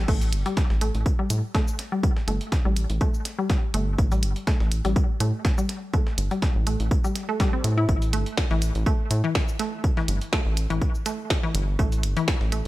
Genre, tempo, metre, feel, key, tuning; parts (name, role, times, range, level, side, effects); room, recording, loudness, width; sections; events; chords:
minimal techno; 123 BPM; 4/4; swing 54% on 16ths; A4 = 437 Hz
rubbery square bass; bass; 0.0-12.7 s; G1 to A2; -24 LUFS; equal; tube saturation, sidechain pumping
resonant blip pluck; riff; 0.1-12.6 s; E3 to E4; -29 LUFS; left 1 dB; chorus, sidechain pumping, dub echo
breakbeat sampler-style drum kit; drums; 0.1-12.7 s; hi-hat, snare drum, tambourine; -36 LUFS; equal; high-pass filter on perc, small room ambience, high-pass filter on hats, high-pass filter on snare
electronic kick drum; drums; 0.1-12.4 s; -23 LUFS; equal; small room ambience
minimal click drum kit; drums; 0.1-12.6 s; cabasa, crash cymbal, hi-hat, snare drum; -31 LUFS; right 1 dB; small room ambience
digital ambience; -22 LUFS; side -17 dB against mid
0.0-12.7 A section
0.0 A7(no3)